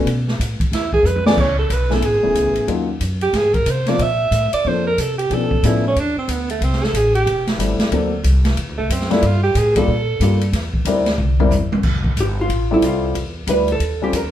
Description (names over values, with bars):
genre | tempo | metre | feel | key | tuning
jazz, small-group swing and bop | 184 BPM | 4/4 | swing 63% on 8ths | unclear | A4 = 440 Hz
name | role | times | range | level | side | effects
dark baby grand piano | accompaniment | 0.0-14.1 s | E3 to B4 | -20 LUFS | left 3 dB | none
upright bass | bass | 0.0-14.3 s | E1 to C3 | -20 LUFS | equal | none
swinging big-band drum kit | drums | 0.1-14.2 s | crash cymbal, hi-hat, kick drum, ride cymbal, snare drum, toms | -23 LUFS | equal | none
breathy alto saxophone | second line | 0.7-10.5 s | A3 to E5 | -19 LUFS | right 2 dB | none
vintage hollow-body jazz guitar | melody | 12.2-14.3 s | E4 to B4 | -20 LUFS | right 2 dB | none
room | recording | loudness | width
wet studio reverb, RT60 0.8 s | band playing live in one room | -15 LUFS | side -11 dB against mid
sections
0.0-1.4 A section; 1.4-11.8 A section; 11.8-14.3 A section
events
alto saxophone solo 0.0-11.8; drum fill 1.1-1.4, 11.2-11.8; hollow-body jazz guitar solo 11.8-14.3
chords
0.1 Asus2; 0.7 E; 1.4 Amaj7; 2.7 Ebm7; 3.3 Abadd9; 4.0 Bbmaj7; 5.3 Bm7b5; 6.0 Cmaj9 (rootless); 6.6 Am7; 7.9 D7b13; 9.2 Gm7; 10.5 C7; 11.8 Fmaj9; 13.2 Em7; 13.8 Eb13